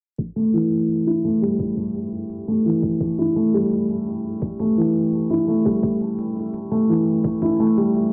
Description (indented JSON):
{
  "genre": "half-time drum and bass",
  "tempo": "170 BPM",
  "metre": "4/4",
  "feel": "swing 55% on 16ths, half-time",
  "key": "unclear",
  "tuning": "A4 = 440 Hz",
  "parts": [
    { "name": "electronic hi-hat", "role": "drums", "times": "0.2-8.0 s", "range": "none", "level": "-57 LUFS", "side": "equal", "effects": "none" },
    { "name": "electronic kick drum", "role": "drums", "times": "0.2-7.5 s", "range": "none", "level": "-29 LUFS", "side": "equal", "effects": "high-pass filter on kick, high-pass filter on room" },
    { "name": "felt-muted upright piano", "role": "arpeggios", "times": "0.4-8.1 s", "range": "E3 to E4", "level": "-21 LUFS", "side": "equal", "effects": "low-pass filter, dub echo" }
  ],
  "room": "moderate lush hall reverb, RT60 1.6 s, digital ambience",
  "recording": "low-pass filter",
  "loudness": "-21 LUFS",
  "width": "mono",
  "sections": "0.2-8.1 A section",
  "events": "filter sweep on felt piano 0.2-8.1; filter sweep 0.2-8.1",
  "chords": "none"
}